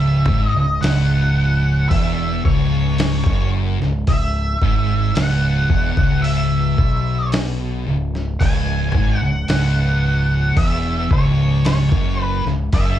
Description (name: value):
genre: stoner and doom metal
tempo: 55 BPM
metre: 4/4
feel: straight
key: C# minor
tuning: A4 = 443 Hz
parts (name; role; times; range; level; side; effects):
- octave-fuzz lead guitar; melody; 0.0-13.0 s; C#5 to G#5; -24 LUFS; equal; distortion
- thick fuzz guitar; riff; 0.0-13.0 s; C#2 to B2; -21 LUFS; left 4 dB; distortion
- thick fuzz guitar; riff; 0.0-13.0 s; C#2 to B2; -22 LUFS; right 6 dB; distortion
- growling fingered electric bass; bass; 0.0-13.0 s; C#1 to B1; -22 LUFS; equal; overdrive, tube saturation
- dusty soul sampler-style drum kit; drums; 0.3-13.0 s; hi-hat, kick drum, snare drum; -19 LUFS; equal; none
room: moderate large studio reverb, RT60 0.8 s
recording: band playing live in one room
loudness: -15 LUFS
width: side -11 dB against mid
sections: 0.0-13.0 A section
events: none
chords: 0.0 C#m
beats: 0.83 1.91 3.00 | 4.08 5.17 6.25 7.33 | 8.42 9.50 10.58 11.66 | 12.74